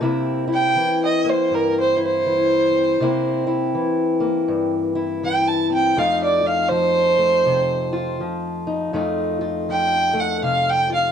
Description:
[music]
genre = acoustic country blues, solo or duo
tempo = 81 BPM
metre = 4/4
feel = swing 62% on 8ths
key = C mixolydian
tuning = A4 = 440 Hz
[part]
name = fingerpicked steel-string acoustic guitar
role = accompaniment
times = 0.0-11.1 s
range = F2 to F4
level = -21 LUFS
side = left 2 dB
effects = none
[part]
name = dark fiddle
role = melody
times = 0.5-11.1 s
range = Bb4 to A5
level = -18 LUFS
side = right 2 dB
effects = none
[sound]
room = light reverb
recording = dark, warm production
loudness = -17 LUFS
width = side -8 dB against mid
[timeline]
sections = 0.0-11.1 A section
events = fiddle solo 0.0-11.1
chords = 0.0 C7; 6.0 F7

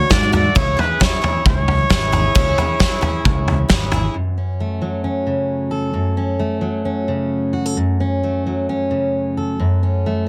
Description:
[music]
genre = indie folk with a building arrangement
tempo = 132 BPM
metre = 4/4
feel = straight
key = F# minor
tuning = A4 = 435 Hz
[part]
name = clear trumpet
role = melody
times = 0.0-3.7 s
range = B4 to D5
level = -23 LUFS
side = equal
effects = none
[part]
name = picked twelve-string acoustic guitar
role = accompaniment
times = 0.0-4.2 s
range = C#3 to G#4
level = -26 LUFS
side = equal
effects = none
[part]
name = fingered electric bass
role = bass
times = 0.0-4.1 s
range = G#1 to G#2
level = -22 LUFS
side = equal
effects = none
[part]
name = loose indie drum kit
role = drums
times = 0.1-4.0 s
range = kick drum, snare drum, toms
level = -19 LUFS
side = equal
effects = none
[part]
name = fingerpicked steel-string acoustic guitar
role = accompaniment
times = 4.1-10.3 s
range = F#2 to A4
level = -20 LUFS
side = equal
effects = none
[sound]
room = little or no reverb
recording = dense, heavily limited modern master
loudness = -18 LUFS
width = mono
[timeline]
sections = 0.0-4.1 A section; 4.1-10.3 B section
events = none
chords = 0.0 D; 0.6 C#m; 4.1 F#m

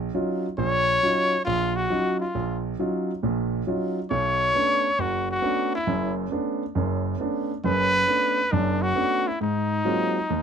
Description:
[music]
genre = jazz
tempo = 136 BPM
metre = 4/4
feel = swing 67% on 8ths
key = unclear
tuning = A4 = 443 Hz
[part]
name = warm grand piano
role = accompaniment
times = 0.0-10.4 s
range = F#1 to F4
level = -25 LUFS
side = right 2 dB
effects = none
[part]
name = warm trumpet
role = melody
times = 0.6-10.4 s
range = D4 to C#5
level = -23 LUFS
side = left 1 dB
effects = none
[sound]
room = light reverb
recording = close, detailed microphones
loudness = -22 LUFS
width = side -7 dB against mid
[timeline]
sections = 0.0-10.4 A section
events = none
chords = 0.0 Ebm9; 4.1 Bm9; 9.4 Ab13

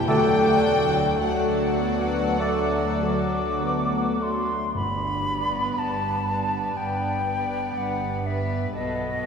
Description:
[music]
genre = classical, slow romantic movement for symphony orchestra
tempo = 46-64 BPM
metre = 4/4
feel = rubato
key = G major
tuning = A4 = 440 Hz
[part]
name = warm studio violin section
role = melody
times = 0.0-9.3 s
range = B4 to G5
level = -33 LUFS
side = left 5 dB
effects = none
[part]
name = concert flute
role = second line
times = 0.0-9.3 s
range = D#5 to D6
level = -28 LUFS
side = left 1 dB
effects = none
[part]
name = warm symphonic violin section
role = second line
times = 0.0-9.3 s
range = A4 to D5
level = -32 LUFS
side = left 1 dB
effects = none
[part]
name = warm symphonic viola section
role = accompaniment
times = 0.0-9.3 s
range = F#3 to F#4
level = -31 LUFS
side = equal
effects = none
[part]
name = mellow French horn section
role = sustained chords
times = 0.0-4.8 s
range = F#3 to A4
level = -27 LUFS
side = left 2 dB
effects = none
[part]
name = dark symphonic double bass section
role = bass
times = 0.0-9.3 s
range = G1 to D2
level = -33 LUFS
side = right 2 dB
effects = none
[part]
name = warm symphonic cello section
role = bass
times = 0.0-9.3 s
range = D2 to B2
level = -30 LUFS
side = right 3 dB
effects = none
[part]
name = mellow cor anglais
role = second line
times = 0.1-2.9 s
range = D5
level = -36 LUFS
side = right 2 dB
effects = none
[part]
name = warm clarinet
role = second line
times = 0.1-2.9 s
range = A4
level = -36 LUFS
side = left 1 dB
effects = none
[part]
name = clear bassoon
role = accompaniment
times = 0.1-2.9 s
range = A3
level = -34 LUFS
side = right 3 dB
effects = none
[part]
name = timpani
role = percussion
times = 0.1-6.2 s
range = G2 to D3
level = -30 LUFS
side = equal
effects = none
[sound]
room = wet cathedral reverb, RT60 4.4 s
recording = recorded in a church or concert hall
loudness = -22 LUFS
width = side -6 dB against mid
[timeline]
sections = 0.0-4.8 A section; 4.8-9.3 B section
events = none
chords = 0.1 D; 4.8 G; 8.7 B7

